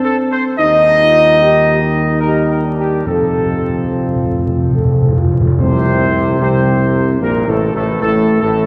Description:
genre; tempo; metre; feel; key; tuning
classical, ceremonial fanfare; 73 BPM; 3/4; uneven beats; unclear; A4 = 439 Hz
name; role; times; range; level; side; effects
dark trumpet section; melody; 0.0-8.7 s; G4 to Eb5; -17 LUFS; equal; none
mellow French horn section; sustained chords; 0.0-8.7 s; A3 to A4; -22 LUFS; equal; none
warm trombone section; sustained chords; 0.6-8.7 s; A2 to Eb4; -25 LUFS; equal; none
mellow tuba; bass; 0.6-8.7 s; A1 to F2; -20 LUFS; equal; none
timpani; percussion; 3.1-6.8 s; F2; -19 LUFS; equal; none
room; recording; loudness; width
wet cathedral reverb, RT60 4.5 s; vinyl crackle; -14 LUFS; mono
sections
0.0-5.6 A section; 5.6-8.7 B section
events
timpani fill 3.1-5.6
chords
0.0 F (rootless); 0.6 Eb; 3.1 F; 5.6 Am

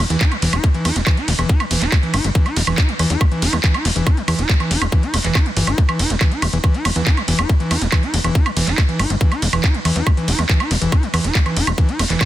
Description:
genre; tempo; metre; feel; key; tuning
psychedelic trance; 140 BPM; 4/4; straight; E phrygian; A4 = 440 Hz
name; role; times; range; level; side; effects
overdriven acid bass; riff; 0.0-12.3 s; E3 to E4; -22 LUFS; equal; distortion, auto-pan, sidechain pumping, digital delay
tight sequencer bass; bass; 0.0-12.2 s; E1 to E2; -19 LUFS; equal; none
drum and bass drum kit; drums; 0.1-12.3 s; handclaps, hi-hat, ride cymbal, woodblock; -21 LUFS; right 2 dB; none
electronic kick drum; drums; 0.2-12.3 s; none; -15 LUFS; equal; none
room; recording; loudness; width
digital ambience; dense, heavily limited modern master; -15 LUFS; side -14 dB against mid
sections
0.0-12.3 A section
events
none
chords
0.0 E5

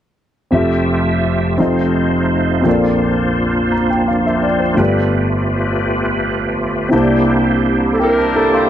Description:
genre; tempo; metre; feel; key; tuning
gospel; 56 BPM (dotted quarters); 6/8; straight; F major; A4 = 440 Hz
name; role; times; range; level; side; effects
warm concert grand piano; accompaniment; 0.5-8.7 s; F1 to C6; -15 LUFS; equal; none
bright tonewheel organ; sustained chords; 0.5-8.7 s; A3 to E5; -18 LUFS; right 1 dB; fast rotary speaker, chorus vibrato
mellow clarinet; melody; 7.9-8.7 s; A4 to Bb4; -16 LUFS; right 4 dB; none
mellow saxophone section; melody; 8.0-8.7 s; D4 to Bb4; -18 LUFS; left 2 dB; none
room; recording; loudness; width
light reverb, small room ambience; dry, close 1970s-style studio recording; -13 LUFS; side -10 dB against mid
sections
0.5-8.7 A section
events
grand piano fill 8.0-8.7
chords
0.5 Fmaj9; 1.6 F7; 2.7 Bbmaj9; 4.8 G9; 6.9 C13

